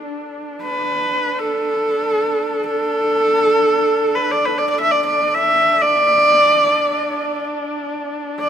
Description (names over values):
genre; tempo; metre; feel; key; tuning
mongolian traditional, Mongolian folk; free time; none; none; unclear; A4 = 441 Hz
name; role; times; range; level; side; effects
rich horsehead fiddle; drone; 0.0-8.5 s; D4; -27 LUFS; right 1 dB; none
rich horsehead fiddle; melody; 0.6-8.5 s; A4 to E5; -15 LUFS; equal; none
room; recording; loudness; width
moderate huge ambient reverb, RT60 7.7 s; minimal, uncompressed stereo recording; -15 LUFS; side -9 dB against mid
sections
0.1-8.5 A section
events
none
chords
none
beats
free time